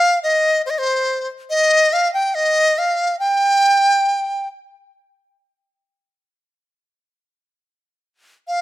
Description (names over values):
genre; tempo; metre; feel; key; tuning
chinese traditional; 69 BPM; 2/4; rubato; unclear; A4 = 440 Hz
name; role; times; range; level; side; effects
dizi; solo; 0.0-4.5, 8.5-8.6 s; C5 to G5; -15 LUFS; equal; none
room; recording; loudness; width
light reverb; close, detailed microphones; -15 LUFS; side -15 dB against mid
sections
0.0-8.6 A section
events
none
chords
none